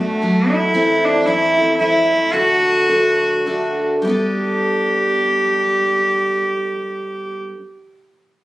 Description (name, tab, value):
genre	acoustic folk duo or small band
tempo	100-115 BPM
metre	3/4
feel	swing 58% on 8ths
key	G major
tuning	A4 = 439 Hz
part	rich cello	melody	0.0-7.3 s	A3 to G4	-16 LUFS	equal	plate reverb
part	picked twelve-string acoustic guitar	accompaniment	0.0-7.6 s	D3 to A4	-19 LUFS	equal	none
part	woody FM bass	bass	0.0-0.7 s	F#1	-52 LUFS	right 1 dB	none
room	moderate studio reverb, RT60 0.5 s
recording	recorded on a phone in the room, club reverb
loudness	-14 LUFS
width	side -16 dB against mid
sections	0.0-4.0 A section; 4.0-7.7 B section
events	slowing down 0.7-4.0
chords	0.0 D/F#; 0.7 Am/E; 2.3 D; 4.0 Gadd9